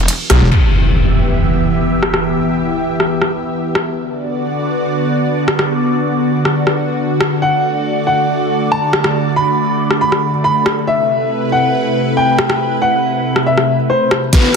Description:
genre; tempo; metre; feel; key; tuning
heavy wobble dubstep; 139 BPM; 4/4; half-time; E minor; A4 = 440 Hz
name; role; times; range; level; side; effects
dubstep drum kit; drums; 0.1-14.4 s; crash cymbal, hi-hat, ride cymbal, rim click, snare drum; -18 LUFS; equal; low-pass filter on hats, soft clipping on snare, low-pass filter on snare, low-pass filter on cymbals, low-pass filter on room
wobble bass; bass; 0.4-0.5 s; E1; -12 LUFS; equal; chorus, overdrive
lush unison pad; sustained chords; 0.8-14.6 s; B2 to E5; -16 LUFS; equal; chorus, phaser, sidechain pumping
impact and riser; sound effects; 0.5-2.2, 14.3-14.6 s; none; -15 LUFS; equal; none
dark grand piano; melody; 7.4-14.6 s; B3 to B5; -16 LUFS; equal; low-pass filter, digital delay
electronic kick drum; drums; 14.3-14.4 s; none; -12 LUFS; equal; none
room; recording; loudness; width
moderate plate reverb, RT60 2.1 s; dense, heavily limited modern master; -12 LUFS; side -5 dB against mid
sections
0.5-14.3 A section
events
kick drops out 0.1-0.5; band accent 0.3; impact 0.5-2.2; drum fill 14.3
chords
0.0 E5; 0.5 Em; 4.0 Bm/D; 7.4 D; 10.9 Amadd9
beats
0.08 | 0.52 0.95 1.38 1.81 | 2.24 2.67 3.10 3.54 | 3.97 4.40 4.83 5.26 | 5.70 6.13 6.56 6.99 | 7.42 7.85 8.29 8.72 | 9.15 9.58 10.01 10.44 | 10.88 11.31 11.74 12.17 | 12.60 13.03 13.46 13.90 | 14.33

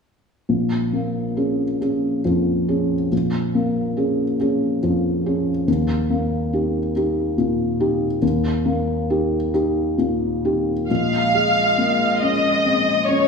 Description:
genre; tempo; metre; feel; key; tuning
neoclassical piano and strings; 46 BPM (dotted quarters); 6/8; rubato; Bb dorian; A4 = 441 Hz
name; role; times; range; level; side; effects
felt-muted upright piano; accompaniment; 0.5-13.3 s; Bb1 to Ab4; -19 LUFS; equal; none
muted chamber violin section; melody; 10.9-13.3 s; Db5 to F5; -18 LUFS; left 1 dB; none
muted cello; second line; 10.9-13.3 s; Ab3; -24 LUFS; right 1 dB; none
room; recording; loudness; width
wet scoring stage reverb, RT60 1.8 s; recorded in a church or concert hall, studio reverb; -18 LUFS; side -5 dB against mid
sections
0.5-10.9 A section; 10.9-13.3 B section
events
none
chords
0.5 Bbm7; 5.7 Eb; 10.9 Bbm7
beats
| 0.49 1.81 | 3.12 4.40 | 5.67 6.95 | 8.22 9.53 | 10.89 12.21

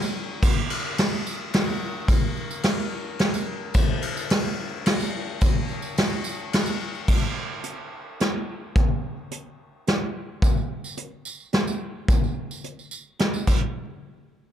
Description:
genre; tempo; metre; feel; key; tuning
rock; 108 BPM; 3/4; straight; none; none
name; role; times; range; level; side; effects
tambourine; percussion; 0.0-7.0, 10.4-13.7 s; none; -39 LUFS; right 6 dB; none
soft brush drum kit; drums; 0.4-13.6 s; crash cymbal, hi-hat, kick drum, ride cymbal, snare drum; -23 LUFS; equal; none
room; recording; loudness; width
light reverb; dark, warm production; -22 LUFS; side -10 dB against mid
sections
0.0-7.1 A section; 7.1-13.8 B section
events
none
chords
none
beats
| 0.42 0.98 1.53 | 2.09 2.65 3.20 | 3.75 4.31 4.86 | 5.42 5.97 6.53 | 7.08 7.64 8.20 | 8.75 9.31 9.87 | 10.42 10.98 11.53 | 12.09 12.64 13.20

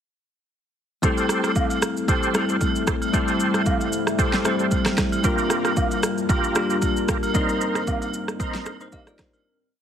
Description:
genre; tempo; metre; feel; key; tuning
amapiano; 114 BPM; 4/4; swing 55% on 16ths; A phrygian; A4 = 438 Hz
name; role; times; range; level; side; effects
bell-like tine electric piano; accompaniment; 1.0-9.6 s; G3 to Eb5; -25 LUFS; left 3 dB; none
deep dark ambient pad; sustained chords; 1.9-9.4 s; G3 to Bb4; -29 LUFS; left 1 dB; chorus, built-in reverb, sidechain pumping
tonewheel organ; stabs; 1.0-8.9 s; Eb4 to C5; -27 LUFS; right 2 dB; overdrive, chorus vibrato, fast rotary speaker, digital delay
deep house drum kit; drums; 1.0-9.4 s; kick drum, rim click, shaker, snare drum; -24 LUFS; right 1 dB; none
agogo bells and woodblock; percussion; 1.2-9.4 s; none; -31 LUFS; right 3 dB; none
room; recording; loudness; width
light reverb; heavily compressed radio sound; -20 LUFS; side -8 dB against mid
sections
1.0-9.5 groove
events
fade-out 7.3-9.5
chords
1.0 Am7; 5.2 Gm7; 7.3 Cm7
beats
| 1.03 1.56 2.08 2.61 | 3.14 3.66 4.19 4.71 | 5.24 5.77 6.29 6.82 | 7.35 7.87 8.40 8.93

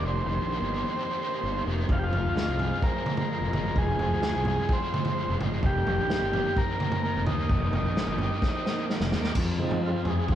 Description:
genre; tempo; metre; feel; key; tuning
psychedelic rock; 129 BPM; 4/4; straight; F dorian; A4 = 439 Hz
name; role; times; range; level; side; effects
combo organ; melody; 0.0-8.9 s; Eb4 to C5; -30 LUFS; equal; none
bright tonewheel organ; sustained chords; 0.0-10.3 s; F3 to D6; -38 LUFS; right 2 dB; overdrive, fast rotary speaker
overdriven semi-hollow guitar; riff; 0.0-10.3 s; F2 to Ab4; -33 LUFS; left 1 dB; harmonic tremolo
fuzz fingered electric bass; bass; 0.0-10.3 s; F1 to F3; -30 LUFS; equal; overdrive
vintage drum kit; drums; 1.9-10.3 s; crash cymbal, kick drum, snare drum, toms; -28 LUFS; equal; none
room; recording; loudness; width
moderate large studio reverb, RT60 1.2 s; band playing live in one room; -24 LUFS; side -11 dB against mid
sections
0.0-9.4 A section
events
drum fill 8.4-9.4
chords
0.0 Cm7/F; 1.9 Fm; 5.6 Cm7/F; 9.4 Fm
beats
| 0.03 0.50 0.97 1.43 | 1.90 2.37 2.83 3.30 | 3.76 4.23 4.70 5.16 | 5.63 6.10 6.56 7.03 | 7.50 7.96 8.43 8.89 | 9.36 9.83 10.29

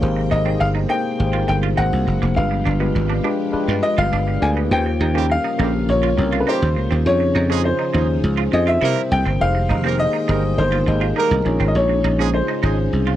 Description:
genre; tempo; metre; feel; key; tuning
pop; 102 BPM; 4/4; straight; unclear; A4 = 439 Hz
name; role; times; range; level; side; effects
tine electric piano; accompaniment; 0.0-13.2 s; Ab3 to F5; -23 LUFS; left 3 dB; analog chorus
string machine, full ensemble; sustained chords; 0.0-13.2 s; C3 to G5; -30 LUFS; right 1 dB; ensemble chorus
dry thumbed slap bass; bass; 0.0-13.2 s; F1 to C3; -19 LUFS; right 1 dB; none
clean electric guitar; riff; 0.2-13.2 s; Bb3 to F4; -28 LUFS; right 8 dB; ensemble chorus
warm baby grand piano; melody; 0.3-12.9 s; Bb4 to Ab5; -22 LUFS; left 1 dB; none
warm horn section; second line; 5.2-12.8 s; Db3 to Bb4; -25 LUFS; right 11 dB; none
room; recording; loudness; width
little or no reverb; dry, close 1970s-style studio recording; -16 LUFS; side -12 dB against mid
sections
0.0-4.7 A section; 4.7-13.2 B section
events
none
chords
0.0 Abmaj9; 1.8 Ab9; 2.4 G7b9; 4.7 Eb13; 7.1 Dbmaj9; 8.8 C7; 9.4 Fm11; 11.5 Bbm11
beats
| 0.02 0.61 1.20 1.78 | 2.37 2.96 3.54 4.13 | 4.71 5.30 5.89 6.47 | 7.06 7.65 8.23 8.82 | 9.41 9.99 10.58 11.17 | 11.75 12.34 12.93

